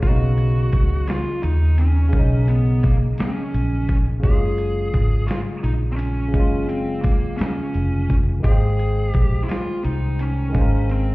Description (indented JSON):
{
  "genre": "slow six-eight R&B",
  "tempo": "57 BPM (dotted quarters)",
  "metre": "6/8",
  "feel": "straight",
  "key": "unclear",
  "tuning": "A4 = 441 Hz",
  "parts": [
    { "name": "fuzz lead guitar", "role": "melody", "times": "0.0-11.1 s", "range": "A#3 to Ab4", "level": "-27 LUFS", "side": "right 1 dB", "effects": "distortion" },
    { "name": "barky tine electric piano", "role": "accompaniment", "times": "0.0-11.1 s", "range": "C#3 to G5", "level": "-27 LUFS", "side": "left 2 dB", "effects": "none" },
    { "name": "vintage muted fingered electric bass", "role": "bass", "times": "0.0-11.1 s", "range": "F1 to D#2", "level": "-20 LUFS", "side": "equal", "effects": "none" },
    { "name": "dusty soul sampler-style drum kit", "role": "drums", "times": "0.0-11.1 s", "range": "hi-hat, kick drum, snare drum", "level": "-19 LUFS", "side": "equal", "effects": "none" }
  ],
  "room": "digital ambience",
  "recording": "heard muffled through a wall, stone room reverb, EQ",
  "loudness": "-17 LUFS",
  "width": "side -20 dB against mid",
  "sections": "0.0-11.1 A section",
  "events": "none",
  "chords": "0.0 Bmaj9; 4.2 Gbmaj9; 8.4 Abmaj9",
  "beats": "| 0.03 1.08 | 2.13 3.18 | 4.24 5.29 | 6.34 7.39 | 8.45 9.50 | 10.55"
}